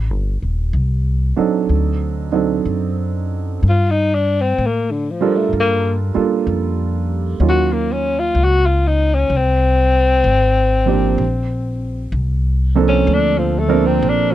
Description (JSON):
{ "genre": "jazz ballad", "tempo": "63 BPM", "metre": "4/4", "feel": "swing 67% on 8ths", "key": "unclear", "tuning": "A4 = 438 Hz", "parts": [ { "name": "upright bass", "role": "bass", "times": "0.0-14.3 s", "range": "Eb1 to A2", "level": "-18 LUFS", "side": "equal", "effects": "none" }, { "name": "dark upright piano", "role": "accompaniment", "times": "1.4-14.3 s", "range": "F3 to Bb4", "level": "-19 LUFS", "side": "right 8 dB", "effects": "none" }, { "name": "breathy tenor saxophone", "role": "melody", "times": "3.7-14.3 s", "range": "D3 to Gb4", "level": "-17 LUFS", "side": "left 3 dB", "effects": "none" } ], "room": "little or no reverb", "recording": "dry, close 1970s-style studio recording", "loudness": "-14 LUFS", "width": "side -13 dB against mid", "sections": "0.0-14.3 A section", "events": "tenor saxophone solo 0.0-14.3", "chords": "0.0 Am7b5; 1.7 D7b9; 3.6 Gm7; 7.4 Ebm7; 9.3 Abadd9; 11.2 Bbmaj9" }